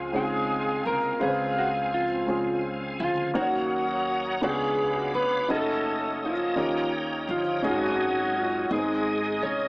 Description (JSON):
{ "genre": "slow gospel", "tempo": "56 BPM (dotted quarters)", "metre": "6/8", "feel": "straight", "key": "Db major", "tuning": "A4 = 443 Hz", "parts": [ { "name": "electric slide guitar", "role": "melody", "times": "0.0-9.5 s", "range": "F4 to Db5", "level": "-29 LUFS", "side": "equal", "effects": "none" }, { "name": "mellow horn section", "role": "melody", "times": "0.0-9.7 s", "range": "F3 to F5", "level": "-28 LUFS", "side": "equal", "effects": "tape echo" }, { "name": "warm upright piano", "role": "accompaniment", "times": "0.0-9.7 s", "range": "Ab2 to F5", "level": "-30 LUFS", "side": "equal", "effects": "none" }, { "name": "bright tonewheel organ", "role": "sustained chords", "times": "0.0-9.7 s", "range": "C4 to Eb6", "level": "-33 LUFS", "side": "equal", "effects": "fast rotary speaker, chorus vibrato" }, { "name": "upright bass", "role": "bass", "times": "0.0-9.7 s", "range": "F1 to Eb2", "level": "-39 LUFS", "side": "equal", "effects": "none" } ], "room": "light reverb, small room ambience", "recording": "small speaker sound", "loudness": "-24 LUFS", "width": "side -30 dB against mid", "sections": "0.0-9.7 A section", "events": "none", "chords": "0.0 Dbmaj7; 3.4 Ebm7; 4.4 Db7b9; 5.5 Gbm6; 6.6 Eb7; 7.6 Absus4; 8.7 Ab", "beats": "0.14 | 1.21 2.28 | 3.35 4.43 | 5.50 6.57 | 7.64 8.71" }